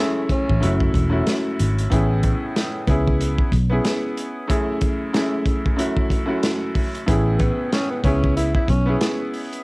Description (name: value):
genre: hip hop, boom-bap hip-hop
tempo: 93 BPM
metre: 4/4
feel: swing 57% on 16ths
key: unclear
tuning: A4 = 440 Hz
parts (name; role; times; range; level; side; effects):
- growling tenor saxophone; melody; 0.0-0.8, 7.4-9.0 s; A3 to E4; -25 LUFS; equal; high-pass filter, low-pass filter, cassette tape, analog delay
- clear upright piano; accompaniment; 0.0-9.6 s; F#2 to G#4; -23 LUFS; equal; high-pass filter, low-pass filter, cassette tape
- crunchy breakbeat drum kit; drums; 0.3-9.6 s; hi-hat, kick drum, snare drum; -22 LUFS; equal; cassette tape
- fingered electric bass; bass; 0.5-8.9 s; E1 to C#2; -20 LUFS; equal; tube saturation
room: light reverb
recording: home recording on cassette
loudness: -18 LUFS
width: side -25 dB against mid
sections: 0.0-9.6 A section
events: none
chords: 0.0 F#m7; 0.6 F#m9/E; 1.9 Amaj7; 2.9 C#m7; 4.5 F#m7; 7.1 Amaj7; 8.0 C#m7